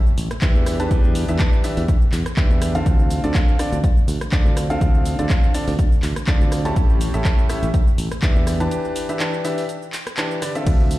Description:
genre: piano house.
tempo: 123 BPM.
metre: 4/4.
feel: swing 54% on 16ths.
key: unclear.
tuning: A4 = 441 Hz.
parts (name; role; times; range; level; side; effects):
punchy analog drum machine; drums; 0.1-11.0 s; handclaps, hi-hat, ride cymbal, rim click, shaker; -29 LUFS; equal; none.
modern bright fingered electric bass; bass; 0.2-11.0 s; A1 to E2; -22 LUFS; equal; tube saturation, sidechain pumping.
bright upright piano; riff; 0.4-11.0 s; A2 to A5; -24 LUFS; equal; sidechain pumping, ping-pong delay.
electronic kick drum; drums; 0.4-10.8 s; none; -17 LUFS; equal; none.
room: digital ambience.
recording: played on a big sound system in a bare room, large studio reverb.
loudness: -17 LUFS.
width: side -16 dB against mid.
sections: 0.0-11.0 A section.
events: break 8.7-10.7.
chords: 0.0 A7(no3); 0.7 Em7; 2.9 Dm7; 6.8 A7; 8.5 Em7.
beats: 0.42 | 0.91 1.40 1.89 2.37 | 2.86 3.35 3.84 4.32 | 4.81 5.30 5.79 6.28 | 6.76 7.25 7.74 8.23 | 8.71 9.20 9.69 10.18 | 10.66.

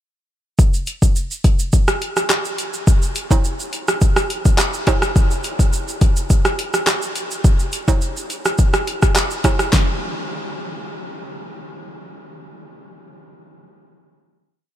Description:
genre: dancehall.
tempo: 105 BPM.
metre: 4/4.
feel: straight.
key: none.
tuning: none.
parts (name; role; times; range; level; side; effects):
deep house drum kit; drums; 0.6-9.9 s; handclaps, hi-hat, kick drum, rim click, shaker, snare drum; -16 LUFS; equal; none.
tube shaker and timbales; percussion; 0.6-10.0 s; none; -28 LUFS; right 4 dB; none.
room: light reverb.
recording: none.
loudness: -16 LUFS.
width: side -12 dB against mid.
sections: 0.6-9.7 chorus; 9.7-12.0 final hit.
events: none.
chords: none.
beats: | 0.59 1.16 1.73 2.30 | 2.87 3.44 4.01 4.59 | 5.16 5.73 6.30 6.87 | 7.44 8.02 8.59 9.16 | 9.73.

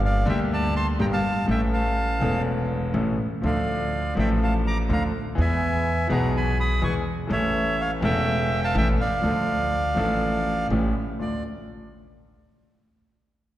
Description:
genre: tango.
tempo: 124 BPM.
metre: 4/4.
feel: rubato.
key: D minor.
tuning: A4 = 444 Hz.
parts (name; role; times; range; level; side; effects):
clear concert grand piano; accompaniment; 0.0-11.4 s; E1 to A4; -25 LUFS; left 1 dB; none.
upright bass; bass; 0.0-11.4 s; E1 to E2; -26 LUFS; equal; none.
bandoneon; melody; 0.1-11.4 s; C#5 to Eb6; -27 LUFS; right 1 dB; none.
room: wet concert hall reverb, RT60 2.0 s.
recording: heard from further back in the room.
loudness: -21 LUFS.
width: side -13 dB against mid.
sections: 0.0-11.2 A section; 11.2-13.1 B section.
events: none.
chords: 0.0 Gm; 1.5 A; 3.4 Dm; 5.4 E; 7.3 A; 9.2 Dm; 10.7 A7; 11.2 Dm.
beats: 0.02 0.50 0.99 | 1.48 1.97 2.45 2.94 | 3.44 3.93 4.41 4.90 | 5.38 5.86 6.34 6.82 | 7.30 7.79 8.27 8.75 | 9.24 9.72 10.21 10.70 | 11.20.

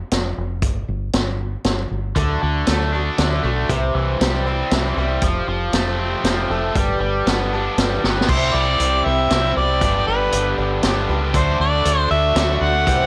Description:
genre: folk rock and heartland rock.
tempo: 118 BPM.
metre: 3/4.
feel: straight.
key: D mixolydian.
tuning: A4 = 440 Hz.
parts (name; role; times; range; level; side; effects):
deep dub fingered electric bass; bass; 0.1-13.1 s; F1 to D2; -25 LUFS; equal; none.
vintage drum kit; drums; 0.1-13.0 s; crash cymbal, hi-hat, kick drum, snare drum; -24 LUFS; equal; none.
picked twelve-string acoustic guitar; accompaniment; 2.2-13.1 s; C3 to D5; -29 LUFS; equal; cassette tape.
overdriven electric guitar; riff; 2.2-13.1 s; G2 to G4; -25 LUFS; equal; cassette tape.
mellow harmonica; melody; 8.3-13.1 s; B4 to F#5; -22 LUFS; equal; none.
room: light reverb.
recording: home recording on cassette.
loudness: -19 LUFS.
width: mono.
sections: 0.0-8.3 A section; 8.3-13.1 B section.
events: drum fill 8.0.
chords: 0.0 N.C.; 2.2 D; 3.7 C; 5.2 Fadd9; 6.8 Gadd9; 8.3 C; 9.8 G; 11.3 D.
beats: 0.12 | 0.63 1.14 1.65 | 2.16 2.67 3.19 | 3.70 4.21 4.72 | 5.23 5.74 6.25 | 6.76 7.27 7.78 | 8.29 8.80 9.31 | 9.82 10.33 10.84 | 11.35 11.86 12.37 | 12.88.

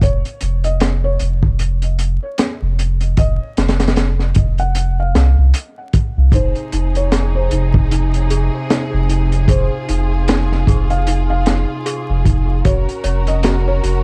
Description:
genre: trip hop.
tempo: 76 BPM.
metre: 4/4.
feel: swing 58% on 16ths.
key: F phrygian.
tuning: A4 = 442 Hz.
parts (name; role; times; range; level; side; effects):
felt-muted upright piano; melody; 0.0-14.0 s; C5 to Gb5; -28 LUFS; equal; vintage 12-bit sampler grit, tape echo.
warm sub bass; bass; 0.0-14.0 s; F1 to C2; -18 LUFS; equal; none.
crunchy breakbeat drum kit; drums; 0.0-14.0 s; hi-hat, kick drum, snare drum; -19 LUFS; equal; vintage 12-bit sampler grit.
rich studio string section; sustained chords; 6.3-14.0 s; C3 to Bb4; -28 LUFS; equal; none.
small celesta; arpeggios; 6.3-14.0 s; Eb4 to Db5; -27 LUFS; equal; tape echo.
room: little or no reverb.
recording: dark, warm production, vinyl crackle.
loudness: -16 LUFS.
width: mono.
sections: 0.0-14.0 A section.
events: none.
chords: 0.0 N.C.; 6.3 Fm7; 12.6 Gb/F.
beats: | 0.02 0.81 1.59 2.38 | 3.17 3.96 4.75 5.54 | 6.33 7.12 7.91 8.70 | 9.49 10.28 11.07 11.86 | 12.65 13.44.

